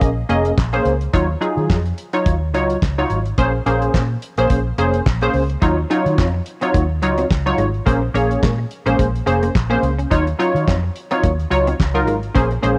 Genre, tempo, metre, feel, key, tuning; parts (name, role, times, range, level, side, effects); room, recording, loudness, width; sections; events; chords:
early-eighties boogie funk; 107 BPM; 4/4; swing 56% on 16ths; A4 = 440 Hz
funky polysynth comp; accompaniment; 0.0-12.8 s; Gb3 to Eb5; -21 LUFS; equal; chorus
vintage muted fingered electric bass; bass; 0.0-12.8 s; F1 to Eb3; -23 LUFS; equal
damped 70s drum kit; drums; 0.0-12.8 s; handclaps, hi-hat, kick drum, snare drum; -21 LUFS; equal; cassette tape
clean electric guitar; riff; 5.6-12.8 s; Ab3 to Eb4; -31 LUFS; equal; ensemble chorus
small room ambience; home recording on cassette; -18 LUFS; mono
0.0-12.8 A section
0.0 Bbm9; 1.1 Ebm9; 3.4 Bbm9; 5.6 Ebm9; 7.9 Bbm9; 10.1 Ebm9